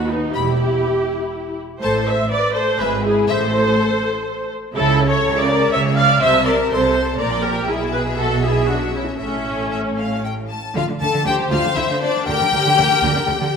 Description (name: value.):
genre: quick classical-period movement for string orchestra.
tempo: 121 BPM.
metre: 3/4.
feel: rubato.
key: unclear.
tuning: A4 = 439 Hz.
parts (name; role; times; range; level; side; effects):
clear studio violin section; melody; 0.0-13.5 s; C#5 to C6; -23 LUFS; left 6 dB; none.
warm symphonic violin section; second line; 0.0-13.5 s; A3 to D5; -24 LUFS; left 3 dB; none.
rich symphonic viola section; accompaniment; 0.0-13.6 s; C#4 to F5; -20 LUFS; right 1 dB; none.
clear symphonic double bass section; bass; 0.0-13.3 s; E1 to D#2; -24 LUFS; right 3 dB; none.
rich symphonic cello section; bass; 0.0-13.4 s; D#2 to D3; -24 LUFS; right 2 dB; none.
room: wet concert hall reverb, RT60 1.9 s.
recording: faint mains hum.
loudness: -16 LUFS.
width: side -6 dB against mid.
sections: 0.0-10.8 A section; 10.8-13.6 B section.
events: none.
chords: 0.3 Em; 1.8 Amadd9; 2.8 E/G#; 3.3 Am; 4.8 Aadd11/C#; 6.2 Am/C; 7.2 Gm/Bb; 7.7 E5/B; 9.2 A; 10.8 Gm/D.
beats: | 0.34 0.83 1.33 | 1.82 2.32 2.80 | 3.29 3.78 4.27 | 4.76 5.25 5.73 | 6.22 6.71 7.19 | 7.68 8.18 8.69 | 9.20 9.72 10.24 | 10.76 11.26 11.76 | 12.28 12.78 13.28.